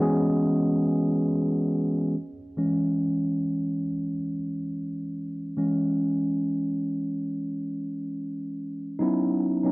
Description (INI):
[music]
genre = R&B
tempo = free time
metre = none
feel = none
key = E major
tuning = A4 = 440 Hz
[part]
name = mellow tine electric piano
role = solo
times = 0.0-9.7 s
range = E3 to G#4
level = -24 LUFS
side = equal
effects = cassette tape
[sound]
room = wet spring reverb, RT60 2.8 s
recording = home recording on cassette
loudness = -24 LUFS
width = side -24 dB against mid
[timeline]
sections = 0.0-2.1 A section; 2.1-9.0 B section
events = tine electric piano solo 2.1-9.0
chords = 0.0 E6; 9.0 C#m11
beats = free time